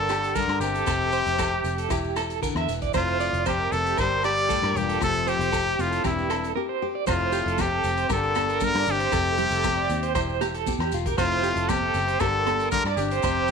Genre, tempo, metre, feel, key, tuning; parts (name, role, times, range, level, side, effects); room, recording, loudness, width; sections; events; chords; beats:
highlife guitar band; 116 BPM; 4/4; straight; F major; A4 = 440 Hz
brilliant trumpet; melody; 0.0-13.5 s; E4 to D5; -25 LUFS; equal; slapback echo
brilliant trombone; second line; 0.0-13.5 s; G2 to G3; -32 LUFS; left 12 dB
nylon-string guitar; accompaniment; 0.0-13.5 s; F2 to G4; -32 LUFS; left 13 dB
clean electric guitar; arpeggios; 0.0-13.5 s; G4 to E5; -29 LUFS; right 13 dB; tremolo, slapback echo
fingered electric bass; bass; 0.0-13.5 s; E1 to G2; -30 LUFS; equal
vintage drum kit; drums; 0.1-13.4 s; hi-hat, kick drum, rim click; -34 LUFS; equal
agogo bells; percussion; 0.1-13.4 s; -37 LUFS; left 17 dB
maracas; percussion; 0.1-13.5 s; -40 LUFS; left 17 dB
congas; percussion; 7.1-13.5 s; -35 LUFS; right 15 dB
light reverb, small room ambience; 1960s-style stereo with parts hard left and right; -22 LUFS; side -6 dB against mid
0.0-7.1 A section; 7.1-13.5 A section
break 6.6-7.1
0.0 Gm; 0.9 Fadd9; 1.9 Em7b5; 2.9 Fadd9; 4.0 Gm; 5.0 Fadd9; 6.0 C/E; 7.1 Fadd9; 8.1 Gm; 9.1 Fadd9; 10.2 C/E; 11.2 Fadd9; 12.2 Gm
0.35 | 0.87 1.39 1.90 2.42 | 2.94 3.46 3.98 4.49 | 5.01 5.53 6.04 6.56 | 7.07 7.59 8.10 8.62 | 9.13 9.64 10.16 10.67 | 11.18 11.70 12.21 12.72 | 13.23